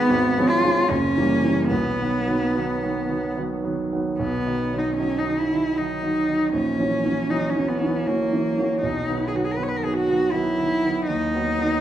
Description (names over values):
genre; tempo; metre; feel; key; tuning
classical, romantic duo for cello and grand piano; 71-82 BPM; 3/4; rubato; B major; A4 = 440 Hz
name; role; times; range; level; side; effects
rich cello; melody; 0.0-11.8 s; A#3 to C#5; -23 LUFS; equal; none
warm concert grand piano; accompaniment; 0.0-11.8 s; F#1 to D#4; -23 LUFS; right 1 dB; none
room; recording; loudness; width
wet recital hall reverb, RT60 1.5 s; minimal, uncompressed stereo recording; -20 LUFS; side -11 dB against mid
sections
0.0-4.2 A section; 4.2-11.8 B section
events
none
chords
0.1 C#7/G#; 0.9 F#7b9; 1.7 B; 6.5 F#7/A#; 8.8 B; 11.1 B/D#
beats
0.11 0.90 | 1.70 2.54 3.36 | 4.18 4.98 5.77 | 6.54 7.30 8.07 | 8.83 9.58 10.34 | 11.09